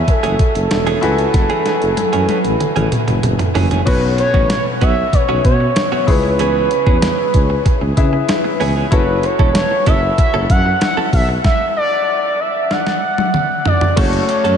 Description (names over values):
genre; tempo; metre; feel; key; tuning
1980s-style pop; 95 BPM; 4/4; straight; F# minor; A4 = 441 Hz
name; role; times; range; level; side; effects
bright grand piano; accompaniment; 0.0-14.6 s; B2 to G#5; -22 LUFS; left 4 dB; none
mellow tuba; bass; 0.0-14.6 s; E1 to C#3; -19 LUFS; equal; none
expressive portamento lead; melody; 0.1-14.6 s; A4 to F#5; -18 LUFS; equal; chorus, analog delay
direct-recorded clean electric guitar; riff; 0.1-14.5 s; E3 to A4; -24 LUFS; right 5 dB; wide subtle chorus, analog delay
clean 12-bit digital drum machine; drums; 0.1-14.6 s; crash cymbal, hi-hat, kick drum, snare drum, toms; -17 LUFS; equal; none
room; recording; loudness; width
moderate huge ambient reverb, RT60 8.3 s; dreamy mix soaked in reverb, nothing above 10.3 kHz; -13 LUFS; side -8 dB against mid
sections
0.0-3.9 A section; 3.9-14.0 B section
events
drum fill 1.3-3.9, 12.7-14.0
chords
0.0 F#m9; 3.9 Bsus2; 6.1 C#m7; 8.9 F#m7; 11.1 Bm; 14.0 F#m